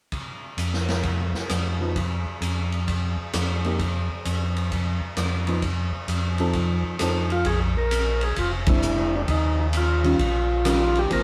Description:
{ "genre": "soul jazz organ trio", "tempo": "131 BPM", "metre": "4/4", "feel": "swing 67% on 8ths", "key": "Bb mixolydian", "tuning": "A4 = 441 Hz", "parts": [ { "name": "swinging big-band drum kit", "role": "drums", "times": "0.1-11.2 s", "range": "hi-hat, kick drum, ride cymbal, rim click, snare drum", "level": "-30 LUFS", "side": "equal", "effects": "none" }, { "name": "mellow tonewheel organ", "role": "bass", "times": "0.6-11.2 s", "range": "F1 to F2", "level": "-27 LUFS", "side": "equal", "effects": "chorus vibrato, slow rotary speaker" }, { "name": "hollow-body jazz guitar", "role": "accompaniment", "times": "1.8-11.2 s", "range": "Eb3 to A4", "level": "-29 LUFS", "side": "equal", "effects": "none" }, { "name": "percussive tonewheel organ", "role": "melody", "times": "7.3-11.2 s", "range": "D4 to Bb4", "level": "-27 LUFS", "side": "equal", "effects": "slow rotary speaker" } ], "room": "wet studio reverb, RT60 0.8 s", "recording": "band playing live in one room", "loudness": "-24 LUFS", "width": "mono", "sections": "0.1-7.5 A section; 7.5-11.2 B section", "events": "band accent 8.6", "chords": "0.1 N.C.; 1.0 Ebsus2/F; 2.0 N.C.; 2.9 F9sus4; 3.8 N.C.; 4.7 Ebsus2/F; 5.6 F7; 7.5 Bb9; 9.3 Eb9" }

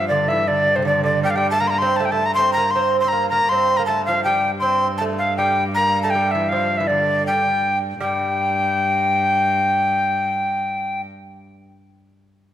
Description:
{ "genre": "medieval dance", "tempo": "160 BPM", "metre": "3/4", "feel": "straight", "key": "G dorian", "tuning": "A4 = 439 Hz", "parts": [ { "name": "tenor recorder", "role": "melody", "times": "0.0-11.0 s", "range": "C5 to C6", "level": "-18 LUFS", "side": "left 1 dB", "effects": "none" }, { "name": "lute", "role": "second line", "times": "0.0-11.7 s", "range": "C3 to C4", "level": "-24 LUFS", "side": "right 5 dB", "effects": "none" }, { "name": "rich viola da gamba", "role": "drone", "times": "0.0-11.1 s", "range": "G2", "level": "-27 LUFS", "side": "equal", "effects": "none" } ], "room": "wet recital hall reverb, RT60 1.6 s", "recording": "none", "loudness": "-17 LUFS", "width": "side -11 dB against mid", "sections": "0.0-8.0 A section; 8.0-10.3 B section", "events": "none", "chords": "none" }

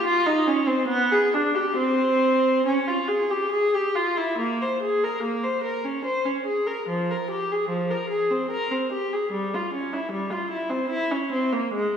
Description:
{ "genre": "classical, baroque-style suite movement for unaccompanied viola", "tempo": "67-76 BPM", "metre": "3/4", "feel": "rubato", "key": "unclear", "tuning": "A4 = 440 Hz", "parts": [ { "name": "rich viola", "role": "solo", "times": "0.0-11.9 s", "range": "F3 to C5", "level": "-22 LUFS", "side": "equal", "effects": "none" } ], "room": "wet scoring stage reverb, RT60 2.0 s", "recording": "heard from further back in the room", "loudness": "-22 LUFS", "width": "side -8 dB against mid", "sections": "0.0-4.4 A section; 4.4-12.0 B section", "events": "none", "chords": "none" }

